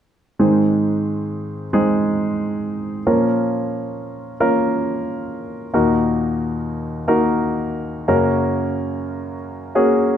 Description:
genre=pop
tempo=90 BPM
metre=4/4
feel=straight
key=unclear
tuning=A4 = 440 Hz
part: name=warm grand piano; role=accompaniment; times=0.4-10.2 s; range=Eb2 to Bb4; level=-18 LUFS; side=equal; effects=none
room=moderate studio reverb, RT60 0.9 s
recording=none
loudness=-17 LUFS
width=side -9 dB against mid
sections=0.4-10.2 A section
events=none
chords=0.4 Ab; 3.1 Bbm; 5.7 Ebm; 8.1 Gb

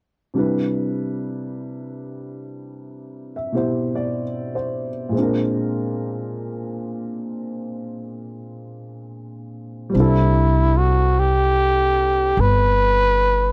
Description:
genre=jazz ballad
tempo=50 BPM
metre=4/4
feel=swing 66% on 8ths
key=C major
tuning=A4 = 438 Hz
part: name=warm upright piano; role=accompaniment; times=0.3-13.5 s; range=Bb2 to E5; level=-27 LUFS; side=equal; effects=none
part: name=upright bass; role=bass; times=9.9-13.5 s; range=G1 to C2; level=-21 LUFS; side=equal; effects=none
part: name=breathy trumpet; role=melody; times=10.0-13.5 s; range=E4 to B4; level=-20 LUFS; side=equal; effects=none
room=little or no reverb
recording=dry, close 1970s-style studio recording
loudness=-20 LUFS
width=mono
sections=0.3-9.9 A section; 9.9-13.5 B section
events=none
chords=0.3 Cmaj7; 5.1 Bb7; 9.9 C69

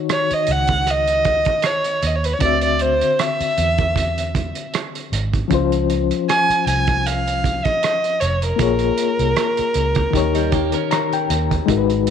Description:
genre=lush 1970s-style soul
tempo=78 BPM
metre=4/4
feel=swing 54% on 16ths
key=unclear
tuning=A4 = 441 Hz
part: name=reed electric piano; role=accompaniment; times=0.0-12.1 s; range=D3 to Bb5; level=-22 LUFS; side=left 11 dB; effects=fast tremolo
part: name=dark violin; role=melody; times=0.1-11.3 s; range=Bb4 to Ab5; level=-19 LUFS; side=right 1 dB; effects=none
part: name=cloth-damped thuddy drum kit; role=drums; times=0.1-12.1 s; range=hi-hat, kick drum, rim click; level=-24 LUFS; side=right 5 dB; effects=none
part: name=vintage muted fingered electric bass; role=bass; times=0.3-12.1 s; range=F1 to E2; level=-22 LUFS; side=right 1 dB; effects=transformer saturation
part: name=clean electric guitar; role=riff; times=10.4-11.6 s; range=G3 to Bb4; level=-26 LUFS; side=right 14 dB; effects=none
room=light reverb, small room ambience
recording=1960s-style stereo with parts hard left and right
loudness=-16 LUFS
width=side -8 dB against mid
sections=0.0-12.1 A section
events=reed electric piano fill 10.5-11.7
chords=0.0 Ebm7; 2.4 D9; 5.5 Dbmaj7; 8.6 Bbm7; 10.1 Eb7

